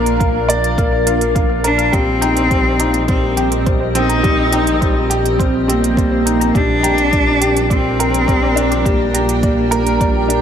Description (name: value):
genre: piano and strings electronica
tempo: 104 BPM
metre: 4/4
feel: straight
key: unclear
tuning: A4 = 440 Hz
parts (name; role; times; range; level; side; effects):
- warm cello; melody; 0.0-10.4 s; Bb3 to Eb4; -18 LUFS; equal; digital delay
- granular cloud pad; sustained chords; 0.0-10.4 s; C4 to G5; -23 LUFS; right 1 dB; built-in reverb, sidechain pumping
- soft round pluck; arpeggios; 0.0-10.4 s; G4 to F6; -26 LUFS; left 1 dB; chorus, sidechain pumping, digital delay
- clear upright piano; riff; 0.0-10.4 s; G3 to D5; -18 LUFS; left 2 dB; digital delay
- dark detuned saw bass; bass; 0.0-10.4 s; Bb1; -20 LUFS; equal; sidechain pumping
- electronic hi-hat; drums; 0.1-10.4 s; none; -23 LUFS; right 6 dB; overdrive
- electronic kick drum; drums; 0.2-10.1 s; none; -18 LUFS; equal; none
room: light reverb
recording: none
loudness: -12 LUFS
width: side -8 dB against mid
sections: 0.0-10.4 A section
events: none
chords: 0.0 Bb; 1.9 Cm7/Bb; 6.5 Gm/Bb